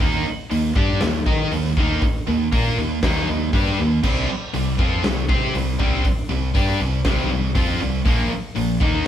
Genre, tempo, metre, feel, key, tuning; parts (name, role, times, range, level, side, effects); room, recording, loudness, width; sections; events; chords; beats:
hard rock; 119 BPM; 4/4; straight; A4 = 437 Hz
cranked stack guitar; riff; 0.0-9.1 s; Bb2 to Eb5; -28 LUFS; equal; overdrive
scooped high-gain guitar; riff; 0.0-9.1 s; Bb2 to Eb5; -25 LUFS; right 6 dB; distortion
sludgy distorted guitar; riff; 0.0-9.1 s; Bb2 to Eb5; -25 LUFS; left 6 dB; overdrive
picked electric bass; bass; 0.0-9.0 s; Bb1 to Eb3; -25 LUFS; equal
big rock drum kit; drums; 0.0-8.9 s; crash cymbal, hi-hat, kick drum, snare drum; -22 LUFS; equal
moderate stone room reverb, RT60 1.0 s; band playing live in one room; -18 LUFS; side -10 dB against mid
0.0-9.1 A section
0.0 Eb5; 4.0 C5; 8.1 Bb5
| 0.00 0.50 1.01 1.51 | 2.02 2.52 3.02 3.53 | 4.03 4.54 5.04 5.54 | 6.05 6.55 7.05 7.55 | 8.06 8.56